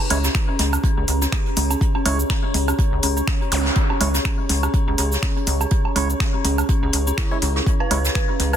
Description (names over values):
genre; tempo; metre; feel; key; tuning
minimal techno; 123 BPM; 4/4; swing 56% on 16ths; C# minor; A4 = 440 Hz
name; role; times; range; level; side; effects
woodblock and congas; percussion; 0.0-8.6 s; none; -29 LUFS; right 4 dB; ping-pong delay
deep dark ambient pad; texture; 0.0-8.6 s; C#4 to E5; -28 LUFS; equal; chorus, built-in reverb, sidechain pumping
dark detuned synth bell; riff; 0.1-8.6 s; C#4 to B4; -27 LUFS; equal; chorus, phaser, sidechain pumping, tape echo
percussive organ stab; stabs; 0.1-8.0 s; G#3 to C#5; -30 LUFS; right 3 dB; chorus, ping-pong delay
rubbery square bass; bass; 0.1-8.6 s; C#2; -21 LUFS; equal; sidechain pumping
jazz brush drum kit; drums; 0.1-8.5 s; hi-hat, snare drum; -30 LUFS; right 2 dB; sidechain pumping on hats, high-pass filter on hats, soft clipping on snare, high-pass filter on snare, high-pass filter on room
minimal click drum kit; drums; 0.1-8.6 s; finger snaps, hi-hat, shaker; -26 LUFS; left 1 dB; soft clipping on snare
electronic kick drum; drums; 0.3-8.3 s; none; -21 LUFS; equal; none
zap; sound effects; 3.5-3.7 s; none; -27 LUFS; equal; none
room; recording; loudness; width
digital ambience; dense, heavily limited modern master; -18 LUFS; side -9 dB against mid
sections
0.0-8.6 A section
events
none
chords
0.0 C#m